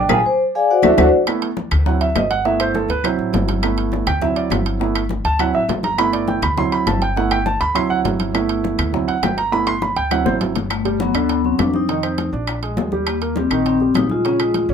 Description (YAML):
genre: Afro-Cuban jazz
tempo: 203 BPM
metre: 4/4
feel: straight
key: G major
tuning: A4 = 440 Hz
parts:
  - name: vibraphone with medium mallets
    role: melody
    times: 0.0-1.1, 10.7-14.7 s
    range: A3 to Ab5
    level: -17 LUFS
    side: left 3 dB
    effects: none
  - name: warm grand piano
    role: accompaniment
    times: 0.0-14.7 s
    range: Db3 to C6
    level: -20 LUFS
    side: right 4 dB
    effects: none
  - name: upright bass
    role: bass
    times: 0.0-14.7 s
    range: G1 to F2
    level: -24 LUFS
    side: left 1 dB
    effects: none
  - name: bongos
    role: percussion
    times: 0.1-14.7 s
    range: none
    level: -26 LUFS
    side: left 6 dB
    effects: none
  - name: claves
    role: percussion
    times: 0.1-14.5 s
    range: none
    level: -28 LUFS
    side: left 6 dB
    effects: none
  - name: congas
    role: percussion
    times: 0.1-14.7 s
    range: none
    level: -28 LUFS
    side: left 2 dB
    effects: none
  - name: timbales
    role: percussion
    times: 0.1-14.7 s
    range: none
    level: -27 LUFS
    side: right 6 dB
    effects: none
room: light reverb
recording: minimal, uncompressed stereo recording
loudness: -16 LUFS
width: side -7 dB against mid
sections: 0.0-1.3 A section; 1.3-10.7 A section; 10.7-14.7 B section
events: vibraphone solo 0.0-1.3; band accent 0.1-1.3; drum fill 0.4-1.3, 10.1-10.7; grand piano solo 1.3-10.7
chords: 0.1 Bb7; 0.7 D7; 1.3 Dsus2; 1.9 D7; 2.5 G6; 3.0 D7; 3.6 G6; 4.2 D7; 4.8 G6; 5.4 D7; 6.0 G6; 6.6 D7; 7.2 G6; 7.8 D7; 8.3 G6; 8.9 D7; 9.5 G6; 10.1 D7; 10.7 Gmaj9; 11.9 F5; 12.5 Bb7; 13.1 Eb6